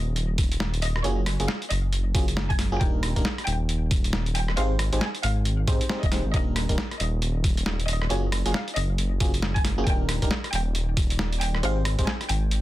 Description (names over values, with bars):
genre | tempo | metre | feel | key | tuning
UK garage, two-step garage | 136 BPM | 4/4 | swing 61% on 16ths | Eb major | A4 = 440 Hz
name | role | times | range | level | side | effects
rich chamber violin section | melody | 0.0-12.6 s | Db5 to Ab5 | -33 LUFS | left 1 dB | ping-pong delay
dark detuned saw bass | bass | 0.0-12.6 s | Eb1 to Ab2 | -25 LUFS | equal | none
deep dark ambient pad | texture | 0.1-12.6 s | C4 to Ab5 | -47 LUFS | right 1 dB | none
boom bap sampler-style drum kit | drums | 0.2-12.6 s | hi-hat, rim click, snare drum | -29 LUFS | equal | soft clipping on snare
electronic kick drum | drums | 0.4-12.1 s | none | -25 LUFS | equal | none
FM electric piano | stabs | 1.0-12.1 s | Bb3 to C5 | -31 LUFS | equal | chorus, tape echo
room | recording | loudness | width
little or no reverb | dense, heavily limited modern master | -22 LUFS | side -15 dB against mid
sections
0.0-12.6 A section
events
none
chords
0.0 Ebmaj7; 1.0 Gbmaj9; 2.8 Ebmaj7; 4.6 Abmaj7; 6.3 Ebmaj7; 8.1 Gbmaj9; 9.9 Ebmaj7; 11.6 Abmaj7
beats
0.16 0.60 | 1.04 1.49 1.93 2.37 | 2.81 3.25 3.69 4.13 | 4.57 5.01 5.46 5.90 | 6.34 6.78 7.22 7.66 | 8.10 8.54 8.98 9.43 | 9.87 10.31 10.75 11.19 | 11.63 12.07 12.51